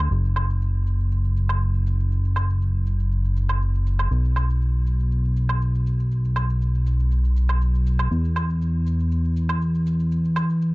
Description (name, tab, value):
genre	progressive house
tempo	120 BPM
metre	4/4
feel	straight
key	unclear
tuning	A4 = 440 Hz
part	fat analog bass	bass	0.0-10.7 s	F#1 to E2	-20 LUFS	equal	none
part	shaker and woodblock	drums	0.0-10.7 s	none	-31 LUFS	right 2 dB	low-pass filter on perc, low-pass filter on room
room	little or no reverb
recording	none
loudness	-20 LUFS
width	side -23 dB against mid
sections	0.0-10.7 A section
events	none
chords	none